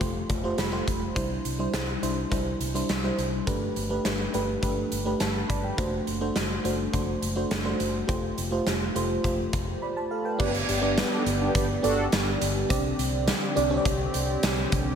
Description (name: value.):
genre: 1980s-style pop.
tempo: 104 BPM.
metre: 4/4.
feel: straight.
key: G major.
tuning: A4 = 437 Hz.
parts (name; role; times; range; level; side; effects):
FM electric piano with soft pad layer; accompaniment; 0.0-15.0 s; G3 to B5; -28 LUFS; right 1 dB; chorus.
vintage muted fingered electric bass; bass; 0.0-14.9 s; F1 to C2; -32 LUFS; left 1 dB; none.
big rock drum kit; drums; 0.0-14.9 s; crash cymbal, hi-hat, kick drum, snare drum, tambourine; -29 LUFS; equal; none.
brassy analog pad; sustained chords; 10.4-15.0 s; D3 to G4; -32 LUFS; equal; chorus.
mellow synth brass; stabs; 10.4-12.1 s; B3 to B4; -30 LUFS; right 1 dB; chorus, digital delay.
room: moderate plate reverb, RT60 2.1 s.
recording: none.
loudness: -24 LUFS.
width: side -7 dB against mid.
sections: 0.0-10.4 A section; 10.4-15.0 B section.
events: FM electric piano fill 0.3-1.2.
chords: 0.0 Fadd9; 1.2 Cadd9; 3.5 Gadd9; 5.8 D7/F#; 8.1 Fadd9; 10.4 G; 12.7 Csus2.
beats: 0.01 0.59 | 1.16 1.74 2.32 2.89 | 3.47 4.05 4.62 5.20 | 5.78 6.36 6.93 7.51 | 8.09 8.66 9.24 9.82 | 10.39 10.97 11.55 12.12 | 12.70 13.28 13.86 14.43.